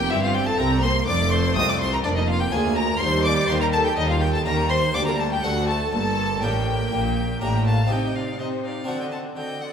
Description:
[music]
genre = classical, baroque-style concerto movement with solo episodes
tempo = 123 BPM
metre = 4/4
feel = straight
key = G minor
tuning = A4 = 440 Hz
[part]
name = clear violin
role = melody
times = 0.0-9.7 s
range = D5 to Eb6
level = -28 LUFS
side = left 1 dB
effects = none
[part]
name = rich chamber violin section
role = melody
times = 0.0-9.7 s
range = F#4 to Eb6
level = -29 LUFS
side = left 3 dB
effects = none
[part]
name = rich chamber violin section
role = second line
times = 0.0-9.7 s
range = D4 to G5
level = -28 LUFS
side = left 2 dB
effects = none
[part]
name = harpsichord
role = accompaniment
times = 0.0-9.7 s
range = C2 to A4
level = -29 LUFS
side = left 1 dB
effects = none
[part]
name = rich chamber viola section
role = accompaniment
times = 0.0-9.7 s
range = G3 to Eb4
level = -29 LUFS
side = right 2 dB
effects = none
[part]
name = rich studio double bass section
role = bass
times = 0.0-7.9 s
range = F1 to Eb2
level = -27 LUFS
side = right 1 dB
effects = none
[part]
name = warm studio cello section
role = bass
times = 0.0-9.7 s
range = C2 to Eb3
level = -26 LUFS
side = right 1 dB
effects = none
[sound]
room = wet recital hall reverb, RT60 1.4 s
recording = minimal, uncompressed stereo recording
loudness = -20 LUFS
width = side -7 dB against mid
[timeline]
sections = 0.0-7.9 A section; 7.9-9.7 B section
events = none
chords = 0.1 C7/G; 1.1 F; 2.0 Bb/F; 3.0 Eb; 4.0 Eb7; 4.9 Gm/D; 5.4 D; 5.9 Gm; 7.9 Cm; 8.9 D7

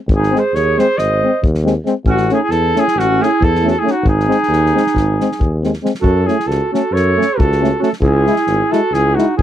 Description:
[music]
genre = balkan folk, Balkan brass band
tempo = 272 BPM (eighths)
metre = 9/8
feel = straight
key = G# phrygian dominant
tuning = A4 = 440 Hz
[part]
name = dark clarinet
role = second line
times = 0.1-9.4 s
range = C#4 to B#4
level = -19 LUFS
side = right 8 dB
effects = none
[part]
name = warm tuba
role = bass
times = 0.1-9.4 s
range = G#1 to F#2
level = -17 LUFS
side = left 1 dB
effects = none
[part]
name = unplugged drum kit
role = percussion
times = 0.1-9.4 s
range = kick drum, snare drum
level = -19 LUFS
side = left 1 dB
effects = none
[part]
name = mellow cornet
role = melody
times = 0.2-9.4 s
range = F#4 to D#5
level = -17 LUFS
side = left 1 dB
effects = none
[part]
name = warm euphonium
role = accompaniment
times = 0.3-9.3 s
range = G#3 to A3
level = -20 LUFS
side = right 4 dB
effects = none
[part]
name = warm trombone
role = accompaniment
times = 0.3-9.3 s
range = B#3 to E4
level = -19 LUFS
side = left 7 dB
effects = none
[sound]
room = light reverb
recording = dry, close 1970s-style studio recording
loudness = -12 LUFS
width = side -11 dB against mid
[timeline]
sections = 0.0-6.0 A section; 6.0-9.4 B section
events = none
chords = 0.0 G#; 2.1 A; 4.0 G#; 6.0 F#m; 8.0 C#m

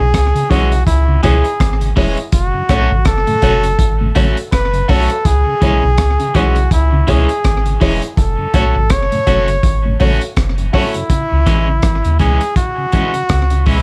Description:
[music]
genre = roots reggae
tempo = 82 BPM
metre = 4/4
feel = swing 58% on 16ths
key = C# minor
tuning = A4 = 439 Hz
[part]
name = clear flugelhorn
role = melody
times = 0.0-13.8 s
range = E4 to C#5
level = -21 LUFS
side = equal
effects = tape echo
[part]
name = mellow tonewheel organ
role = accompaniment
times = 0.0-13.8 s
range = F#2 to C#4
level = -26 LUFS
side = equal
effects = chorus vibrato, slapback echo
[part]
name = mellow electric guitar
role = arpeggios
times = 0.0-13.8 s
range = G#2 to E3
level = -25 LUFS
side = equal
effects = analog chorus
[part]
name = soft dub sub bass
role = bass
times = 0.0-13.8 s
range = E1 to D#2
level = -18 LUFS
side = equal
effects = none
[part]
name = crunchy breakbeat drum kit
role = drums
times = 0.1-13.8 s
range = hi-hat, kick drum, rim click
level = -19 LUFS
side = equal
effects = none
[part]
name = electric guitar at the edge of break-up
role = accompaniment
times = 0.5-13.8 s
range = E3 to F#4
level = -26 LUFS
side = equal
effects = tremolo, tape echo
[part]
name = dark upright piano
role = stabs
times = 0.5-11.0 s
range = E4 to C#5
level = -23 LUFS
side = equal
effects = none
[sound]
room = light reverb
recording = none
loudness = -14 LUFS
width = mono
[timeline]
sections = 0.0-11.1 A section; 11.1-13.8 B section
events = none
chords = 0.0 C#m; 2.3 F#m; 5.3 C#m; 8.2 F#m; 11.1 C#m

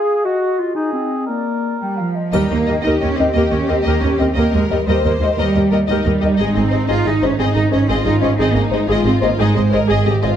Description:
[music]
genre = cinematic, heroic adventure film score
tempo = 119 BPM (dotted quarters)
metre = 12/8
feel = straight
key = Eb mixolydian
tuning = A4 = 440 Hz
[part]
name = mellow clarinet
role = second line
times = 0.0-1.8 s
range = Bb3 to Ab4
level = -19 LUFS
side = left 2 dB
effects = none
[part]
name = mellow cor anglais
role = second line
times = 0.0-2.1 s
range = Gb4 to Bb4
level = -26 LUFS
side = right 3 dB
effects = none
[part]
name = mellow large flute ensemble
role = second line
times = 0.0-2.3 s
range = D5 to G5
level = -26 LUFS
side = equal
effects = none
[part]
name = clear symphonic cello section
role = bass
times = 1.8-9.9 s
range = F3 to F4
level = -18 LUFS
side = right 2 dB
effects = none
[part]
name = rich symphonic violin section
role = melody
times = 2.3-10.3 s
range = Eb5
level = -26 LUFS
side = left 6 dB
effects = none
[part]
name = warm symphonic violin section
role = second line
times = 2.3-10.4 s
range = Eb4 to C5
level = -23 LUFS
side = left 5 dB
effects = none
[part]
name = warm symphonic viola section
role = accompaniment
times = 2.3-10.3 s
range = G4 to Bb4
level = -23 LUFS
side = equal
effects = none
[part]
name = bright studio double bass section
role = bass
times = 2.3-10.3 s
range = Ab1 to Eb2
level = -18 LUFS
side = right 2 dB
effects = none
[part]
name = triangle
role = percussion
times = 2.3-3.0 s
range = none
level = -44 LUFS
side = left 3 dB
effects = none
[part]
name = clear French horn section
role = sustained chords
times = 2.7-10.3 s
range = G4 to Eb5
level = -24 LUFS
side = left 4 dB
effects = none
[sound]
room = wet recital hall reverb, RT60 1.6 s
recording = none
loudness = -14 LUFS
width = side -9 dB against mid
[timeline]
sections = 0.0-2.3 A section; 2.3-10.4 B section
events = none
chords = 0.3 Ebm; 1.3 Bb; 2.3 Eb; 6.4 Ab

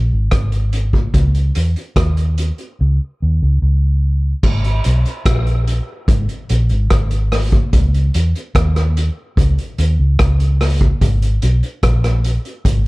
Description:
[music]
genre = dub reggae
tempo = 73 BPM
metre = 4/4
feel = straight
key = G# minor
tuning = A4 = 440 Hz
[part]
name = vintage muted fingered electric bass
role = bass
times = 0.0-12.8 s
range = G#1 to E2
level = -14 LUFS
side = equal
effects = none
[part]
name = vintage drum kit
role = drums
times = 0.3-12.8 s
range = crash cymbal, hi-hat, kick drum, rim click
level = -17 LUFS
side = equal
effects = none
[sound]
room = little or no reverb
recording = dark, warm production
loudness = -14 LUFS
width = side -22 dB against mid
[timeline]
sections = 0.0-4.4 A section; 4.4-12.9 B section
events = drums muted 2.8-4.4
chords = none

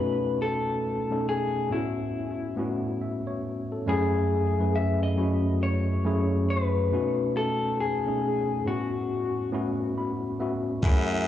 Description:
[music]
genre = lo-fi hip hop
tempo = 69 BPM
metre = 4/4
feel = swing 63% on 16ths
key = unclear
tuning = A4 = 439 Hz
[part]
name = electric guitar through a small old amp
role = melody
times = 0.0-11.2 s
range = E4 to E5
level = -30 LUFS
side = left 4 dB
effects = spring reverb, analog delay
[part]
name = tine electric piano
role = accompaniment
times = 0.0-11.3 s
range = F#2 to B5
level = -26 LUFS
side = equal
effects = overdrive, medium stereo tremolo, cassette tape
[part]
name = growling baritone saxophone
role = bass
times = 10.8-11.3 s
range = F#2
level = -27 LUFS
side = equal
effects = none
[part]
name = electronic kick drum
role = drums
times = 10.8-11.1 s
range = none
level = -22 LUFS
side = equal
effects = vintage 12-bit sampler grit
[sound]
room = light reverb, digital ambience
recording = dry, gritty hardware recording, small room ambience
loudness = -24 LUFS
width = side -11 dB against mid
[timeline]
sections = 0.0-10.8 A section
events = hi-hats muted 10.8-11.3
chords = 0.0 B9; 1.7 A69; 3.9 F#m9; 6.9 B9; 8.7 A69

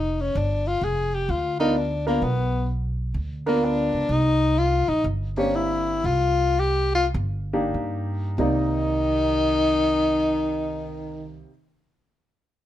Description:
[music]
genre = jazz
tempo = 90-128 BPM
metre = 4/4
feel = swing 66% on 8ths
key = C minor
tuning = A4 = 440 Hz
[part]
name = warm tenor saxophone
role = melody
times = 0.0-11.4 s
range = A#3 to Ab4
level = -23 LUFS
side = left 2 dB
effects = none
[part]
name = upright bass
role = bass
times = 0.0-11.4 s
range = F1 to G2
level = -26 LUFS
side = right 1 dB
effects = none
[part]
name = warm baby grand piano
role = accompaniment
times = 1.6-11.5 s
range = C3 to D5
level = -26 LUFS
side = right 1 dB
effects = none
[part]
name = breathy tenor saxophone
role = second line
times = 8.4-11.4 s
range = Eb3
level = -31 LUFS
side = right 5 dB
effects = none
[sound]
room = light reverb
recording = none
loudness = -21 LUFS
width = side -12 dB against mid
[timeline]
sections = 0.0-8.4 A section; 8.4-12.7 B section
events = slowing down 4.1-8.4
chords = 0.3 G7#9 (rootless); 4.1 Cm9

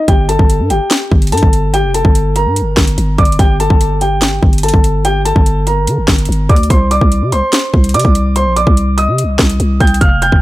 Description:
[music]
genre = hip hop, drill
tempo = 145 BPM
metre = 4/4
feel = half-time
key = G minor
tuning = A4 = 443 Hz
[part]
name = dark baby grand piano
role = melody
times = 0.0-10.4 s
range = G4 to G6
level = -16 LUFS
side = equal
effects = low-pass filter
[part]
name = growling 808-style bass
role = bass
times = 0.1-10.4 s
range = F1 to D3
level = -14 LUFS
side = equal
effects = none
[part]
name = drill drum kit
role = drums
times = 0.1-10.4 s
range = hi-hat, kick drum, rim click, snare drum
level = -11 LUFS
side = equal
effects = none
[sound]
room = little or no reverb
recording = none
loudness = -9 LUFS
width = side -16 dB against mid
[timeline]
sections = 0.1-10.4 A section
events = none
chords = 0.1 Gm; 6.7 Cm

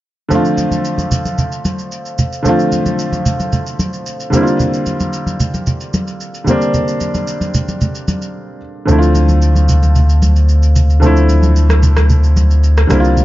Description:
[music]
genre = amapiano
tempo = 112 BPM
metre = 4/4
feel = straight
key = D minor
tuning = A4 = 442 Hz
[part]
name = clear concert grand piano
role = accompaniment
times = 0.3-13.2 s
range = D3 to F4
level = -16 LUFS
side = equal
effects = none
[part]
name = electronic shaker and rim click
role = drums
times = 0.3-13.2 s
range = none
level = -25 LUFS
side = right 1 dB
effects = overdrive
[part]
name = congas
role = percussion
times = 0.3-13.2 s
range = none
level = -19 LUFS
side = right 1 dB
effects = none
[part]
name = punchy sub bass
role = bass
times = 8.9-13.2 s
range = C2 to D2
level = -10 LUFS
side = equal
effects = none
[sound]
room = little or no reverb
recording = dark, warm production, nothing above 7.5 kHz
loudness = -11 LUFS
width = side -16 dB against mid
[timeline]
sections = 0.3-13.2 A section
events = break 8.3-8.9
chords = 0.3 Dm7; 4.3 C9sus4; 8.9 Dm7

